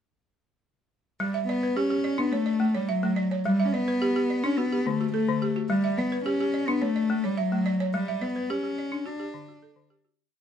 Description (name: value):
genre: west african traditional, West African string and xylophone music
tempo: 107 BPM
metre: 4/4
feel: straight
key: G lydian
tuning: A4 = 441 Hz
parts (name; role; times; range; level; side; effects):
- warm cello; melody; 1.2-9.9 s; F#3 to D4; -26 LUFS; left 2 dB; plate reverb
- balafon; arpeggios; 1.2-10.3 s; D3 to E5; -28 LUFS; right 1 dB; none
room: moderate small room reverb, RT60 0.5 s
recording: dark, warm production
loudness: -24 LUFS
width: side -8 dB against mid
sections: 1.2-10.2 A section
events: fade-out 7.9-10.2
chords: 1.2 G; 2.3 A; 3.5 G; 4.6 D; 5.7 G; 6.8 A; 7.9 G; 9.1 D